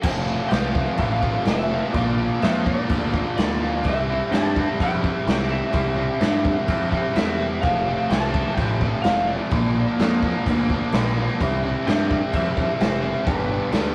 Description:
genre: garage rock duo or trio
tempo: 127 BPM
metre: 4/4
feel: straight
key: unclear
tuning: A4 = 443 Hz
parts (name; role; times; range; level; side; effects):
- overdriven electric guitar; riff; 0.0-13.9 s; F2 to F4; -26 LUFS; equal; none
- growling picked electric bass; bass; 0.0-13.9 s; F1 to G2; -28 LUFS; equal; overdrive, tube saturation
- raw garage drum kit; drums; 0.0-13.8 s; crash cymbal, kick drum, snare drum; -26 LUFS; equal; none
- electric slide guitar; melody; 0.5-13.9 s; B4 to A5; -31 LUFS; equal; none
room: moderate small room reverb, RT60 0.5 s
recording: rough rehearsal-room recording, warm saturation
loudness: -22 LUFS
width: mono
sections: 0.0-13.9 A section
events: none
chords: 0.0 F; 2.0 Bb; 3.9 C; 7.6 F; 9.5 Bb; 11.4 C; 13.3 G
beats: | 0.05 0.53 1.00 1.48 | 1.95 2.43 2.90 3.38 | 3.85 4.33 4.80 5.27 | 5.75 6.22 6.69 7.17 | 7.64 8.11 8.58 9.05 | 9.52 9.99 10.46 10.93 | 11.40 11.87 12.34 12.81 | 13.28 13.74

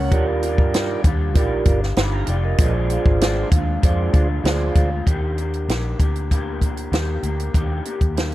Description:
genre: indie pop, bedroom pop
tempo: 97 BPM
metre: 4/4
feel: straight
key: Eb major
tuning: A4 = 440 Hz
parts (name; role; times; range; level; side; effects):
- electric guitar through a small old amp; accompaniment; 0.0-8.3 s; Bb2 to G4; -27 LUFS; left 2 dB; lush chorus, warbly pitch drift
- mellow tonewheel organ; accompaniment; 0.0-4.9 s; F4 to Bb5; -24 LUFS; right 4 dB; slow rotary speaker
- vintage muted fingered electric bass; bass; 0.0-8.3 s; F1 to G2; -23 LUFS; equal; none
- compact cocktail drum kit; drums; 0.1-8.3 s; hi-hat, kick drum, snare drum; -19 LUFS; equal; none
room: studio ambience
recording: none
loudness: -17 LUFS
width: side -16 dB against mid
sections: 0.0-5.1 A section; 5.1-8.3 B section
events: none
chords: 0.1 Ebmaj9; 2.6 Bb7; 5.1 Ebmaj7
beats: | 0.12 0.74 1.35 1.97 | 2.59 3.21 3.83 4.45 | 5.07 5.68 6.30 6.92 | 7.54 8.16

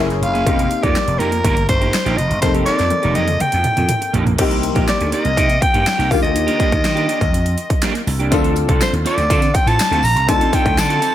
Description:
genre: polished 1980s jazz-funk pop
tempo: 122 BPM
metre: 4/4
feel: straight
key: unclear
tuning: A4 = 440 Hz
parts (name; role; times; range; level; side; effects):
- warm baby grand piano; accompaniment; 0.0-11.1 s; D3 to A4; -23 LUFS; left 5 dB; lush chorus
- electric guitar at the edge of break-up; riff; 0.0-11.1 s; A#3 to A4; -24 LUFS; right 6 dB; analog chorus
- vintage slap bass; bass; 0.0-11.0 s; F1 to Eb3; -20 LUFS; equal; none
- big-room dance drum kit; drums; 0.1-11.1 s; crash cymbal, hi-hat, kick drum, snare drum, toms; -19 LUFS; equal; none
- raspy soprano saxophone; melody; 0.2-11.1 s; Bb4 to Bb5; -19 LUFS; equal; none
- tambourine; percussion; 8.3-11.1 s; none; -32 LUFS; left 8 dB; none
room: light reverb, digital ambience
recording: none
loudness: -14 LUFS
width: side -12 dB against mid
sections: 0.0-4.4 A section; 4.4-11.1 B section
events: drum fill 2.4-4.4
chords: 0.5 F9sus4; 4.4 Cm7; 6.1 Ebmaj7; 8.3 Dm7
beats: | 0.46 0.95 1.44 1.94 | 2.43 2.92 3.41 3.90 | 4.39 4.88 5.37 5.86 | 6.36 6.85 7.34 7.83 | 8.32 8.81 9.30 9.79 | 10.28 10.78

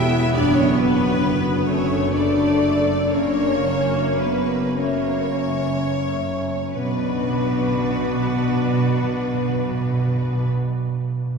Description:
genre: classical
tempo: 28-46 BPM (dotted quarters)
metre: 12/8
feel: rubato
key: B minor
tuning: A4 = 440 Hz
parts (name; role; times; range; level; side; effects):
- rich studio violin section; melody; 0.0-10.5 s; B4 to E5; -30 LUFS; left 3 dB; none
- bright chamber violin section; second line; 0.0-10.5 s; B4 to E5; -29 LUFS; left 2 dB; none
- rich chamber viola section; accompaniment; 0.0-10.5 s; A3 to F#4; -28 LUFS; right 2 dB; none
- mellow French horn section; sustained chords; 0.0-10.5 s; B3 to E4; -23 LUFS; left 1 dB; none
- concert harp; arpeggios; 0.0-10.8 s; E2 to C#6; -29 LUFS; left 3 dB; none
- rich studio double bass section; bass; 0.0-10.5 s; E1 to B1; -27 LUFS; right 3 dB; none
- warm chamber cello section; bass; 0.0-10.5 s; E2 to B2; -31 LUFS; right 2 dB; none
- timpani; percussion; 0.4-10.5 s; F#2 to B2; -26 LUFS; right 3 dB; none
room: wet cathedral reverb, RT60 4.6 s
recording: recorded in a church or concert hall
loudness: -18 LUFS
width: side -5 dB against mid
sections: 0.0-6.8 A section; 6.8-11.4 B section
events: slowing down 0.0-6.8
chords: 0.4 Bm/F#; 3.1 F#7; 6.8 Bm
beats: | 0.35 1.68 3.13 4.78 | 6.76 8.70 10.60

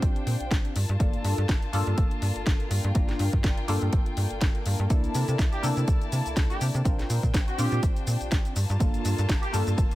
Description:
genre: filtered disco house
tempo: 123 BPM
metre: 4/4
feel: swing 55% on 16ths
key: G dorian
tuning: A4 = 440 Hz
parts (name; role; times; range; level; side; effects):
- funky polysynth comp; accompaniment; 0.0-9.9 s; Bb3 to Bb4; -32 LUFS; left 1 dB; chorus, phaser, sidechain pumping, low-pass filter
- warm studio violin section; sustained chords; 0.0-9.9 s; Bb3 to A5; -37 LUFS; left 2 dB; vintage 12-bit sampler grit, sidechain pumping, low-pass filter
- slap-like FM bass; bass; 0.0-9.9 s; G1 to C3; -27 LUFS; equal; sidechain pumping, low-pass filter
- electronic kick drum; drums; 0.0-9.9 s; none; -24 LUFS; equal; overdrive
- house drum kit; drums; 0.0-9.9 s; hi-hat, shaker, snare drum; -34 LUFS; equal; overdrive, sidechain pumping on hats, sidechain pumping on perc
- bright horn section; melody; 5.5-9.6 s; G4; -36 LUFS; right 1 dB; sidechain pumping, low-pass filter, dub echo
room: little or no reverb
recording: none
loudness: -23 LUFS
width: side -16 dB against mid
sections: 0.0-9.9 A section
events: none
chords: 0.0 Bb69; 0.8 Gm9; 4.9 C13; 6.9 Bb69; 8.6 Gm9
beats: 0.02 0.51 | 1.00 1.49 1.98 2.46 | 2.95 3.44 3.93 4.41 | 4.90 5.39 5.88 6.37 | 6.85 7.34 7.83 8.32 | 8.80 9.29 9.78

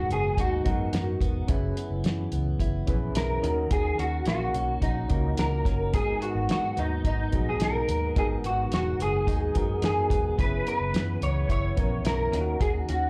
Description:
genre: indie pop, bedroom pop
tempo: 108 BPM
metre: 4/4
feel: straight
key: G# minor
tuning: A4 = 440 Hz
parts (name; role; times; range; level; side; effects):
- electric guitar through a small old amp; melody; 0.0-13.1 s; D#4 to C#5; -31 LUFS; equal; ensemble chorus, plate reverb, slapback echo, digital delay
- direct-recorded clean electric guitar; accompaniment; 0.0-13.1 s; F#2 to F#4; -37 LUFS; equal; subtle chorus, warbly pitch drift, slapback echo
- soft electric-piano-like synth keys; accompaniment; 0.0-13.1 s; A#3 to B4; -39 LUFS; equal; chorus, tremolo, cassette tape, plate reverb, slapback echo
- vintage muted fingered electric bass; bass; 0.0-13.1 s; E1 to G#2; -32 LUFS; equal; none
- cloth-damped thuddy drum kit; drums; 0.1-13.0 s; hi-hat, kick drum, snare drum; -30 LUFS; equal; none
room: light reverb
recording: live gig heard through the venue's PA, club reverb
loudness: -26 LUFS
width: mono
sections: 0.0-13.1 A section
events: none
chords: 0.0 G#m7; 1.5 F#7sus4; 3.4 D#m7; 5.9 G#m7; 10.4 F#7sus4; 12.3 D#m7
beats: 0.38 0.93 | 1.49 2.04 2.60 3.16 | 3.71 4.27 4.82 5.38 | 5.94 6.49 7.05 7.61 | 8.16 8.72 9.27 9.83 | 10.38 10.94 11.49 12.05 | 12.60

